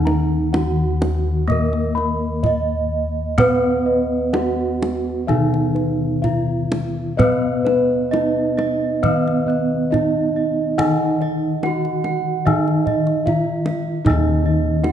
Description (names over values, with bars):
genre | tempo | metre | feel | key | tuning
Javanese gamelan | 63-77 BPM | 4/4 | straight | Eb pelog | A4 = 442 Hz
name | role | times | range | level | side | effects
gamelan-type bronze metallophone | melody | 0.0-14.9 s | Cb4 to Eb5 | -23 LUFS | right 4 dB | none
gamelan-type bronze metallophone | accompaniment | 0.0-14.9 s | Eb3 to Cb4 | -24 LUFS | left 2 dB | none
gamelan-type bossed gongs | arpeggios | 0.0-13.7 s | Cb5 to Cb6 | -27 LUFS | left 2 dB | none
gamelan-type bossed gongs | bass | 0.0-14.9 s | Eb2 to Cb5 | -22 LUFS | left 2 dB | none
kendang | percussion | 0.1-14.9 s | none | -24 LUFS | right 2 dB | none
gamelan-type bronze metallophone | arpeggios | 7.2-14.9 s | Cb5 to Gb5 | -25 LUFS | right 4 dB | none
room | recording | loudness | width
moderate recital hall reverb, RT60 1.8 s | nothing above 10.7 kHz | -17 LUFS | side -9 dB against mid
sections
0.0-14.1 A section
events
none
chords
none